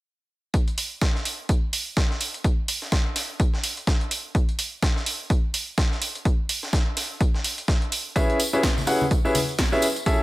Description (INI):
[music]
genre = piano house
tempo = 126 BPM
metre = 4/4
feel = swing 58% on 16ths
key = unclear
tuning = A4 = 441 Hz
[part]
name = breakbeat sampler-style drum kit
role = drums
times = 0.5-10.2 s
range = hi-hat, snare drum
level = -32 LUFS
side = equal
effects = high-pass filter on hats, high-pass filter on snare, high-pass filter on room
[part]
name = electronic kick drum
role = drums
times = 0.5-10.2 s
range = none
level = -22 LUFS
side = equal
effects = none
[part]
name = punchy analog drum machine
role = drums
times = 0.8-9.9 s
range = hi-hat, snare drum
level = -27 LUFS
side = right 2 dB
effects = overdrive
[part]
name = clear upright piano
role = riff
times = 8.2-10.2 s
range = C#4 to F#5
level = -22 LUFS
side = equal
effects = sidechain pumping
[part]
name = tambourine and congas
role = percussion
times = 8.2-10.2 s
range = none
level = -30 LUFS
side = left 2 dB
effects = none
[sound]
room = little or no reverb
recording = none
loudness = -21 LUFS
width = side -19 dB against mid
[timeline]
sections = 0.5-10.2 A section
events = none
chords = 0.5 N.C.; 8.2 C#m7